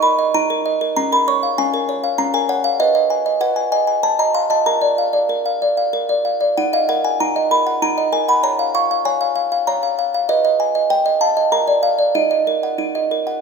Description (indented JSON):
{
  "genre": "classical, lullaby for music box",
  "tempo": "97 BPM",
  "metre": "3/4",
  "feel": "straight",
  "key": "Eb minor",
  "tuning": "A4 = 440 Hz",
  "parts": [
    { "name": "music box", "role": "solo", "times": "0.0-13.4 s", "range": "Db4 to Db6", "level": "-15 LUFS", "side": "equal", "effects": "none" }
  ],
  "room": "wet recital hall reverb, RT60 1.8 s",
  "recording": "minimal, uncompressed stereo recording",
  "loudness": "-15 LUFS",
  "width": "side -5 dB against mid",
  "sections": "0.0-13.4 A section",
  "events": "none",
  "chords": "0.0 Eb5; 1.0 Bbm/Db; 2.8 Abm/Cb; 4.0 F5/C; 4.7 Bb; 6.6 Ebm; 8.4 Bbm/Db; 10.3 Abm/Cb; 10.9 F7/C; 11.5 Bb; 12.1 Ebm",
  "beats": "0.34 | 0.96 1.57 2.18 | 2.80 3.42 4.04 | 4.67 5.30 5.94 | 6.58 7.21 7.83 | 8.45 9.06 9.67 | 10.28 10.90 11.52 | 12.15 12.79"
}